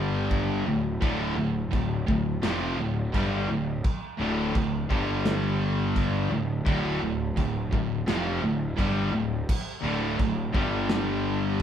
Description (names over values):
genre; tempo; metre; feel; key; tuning
heavy metal; 85 BPM; 4/4; straight; D minor; A4 = 439 Hz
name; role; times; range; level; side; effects
distorted electric guitar; riff; 0.0-11.6 s; D2 to G3; -31 LUFS; left 6 dB; distortion
distorted electric guitar; riff; 0.0-11.6 s; D2 to G3; -31 LUFS; equal; distortion
high-gain distorted guitar; riff; 0.0-11.6 s; D2 to G3; -32 LUFS; right 5 dB; distortion
fuzz picked electric bass; bass; 0.0-11.6 s; D1 to G1; -31 LUFS; equal; overdrive
modern studio drum kit; drums; 0.3-11.6 s; china cymbal, crash cymbal, kick drum, snare drum; -30 LUFS; equal; none
room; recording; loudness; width
moderate stone room reverb, RT60 1.1 s; band playing live in one room; -24 LUFS; side -9 dB against mid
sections
0.0-11.6 A section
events
half time 0.0-11.6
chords
0.0 G5; 0.7 Dm; 4.9 G5; 6.3 Dm; 10.5 G5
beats
0.30 | 1.01 1.72 2.42 3.13 | 3.83 4.54 5.25 5.95 | 6.66 7.36 8.07 8.77 | 9.48 10.18 10.89 11.60